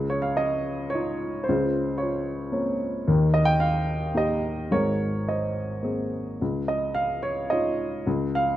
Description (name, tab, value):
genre	classical, lyrical solo piano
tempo	110 BPM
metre	3/4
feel	rubato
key	unclear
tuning	A4 = 440 Hz
part	dark baby grand piano	solo	0.0-8.6 s	Ab1 to G5	-23 LUFS	equal	none
room	moderate recital hall reverb, RT60 1.5 s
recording	close, detailed microphones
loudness	-23 LUFS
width	side -13 dB against mid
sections	0.0-8.6 A section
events	none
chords	0.0 Dbadd9; 1.5 Bbmadd9/Db; 3.1 Eb; 4.7 Abadd9; 6.4 Dbadd9; 8.1 Bbm/Db (rootless)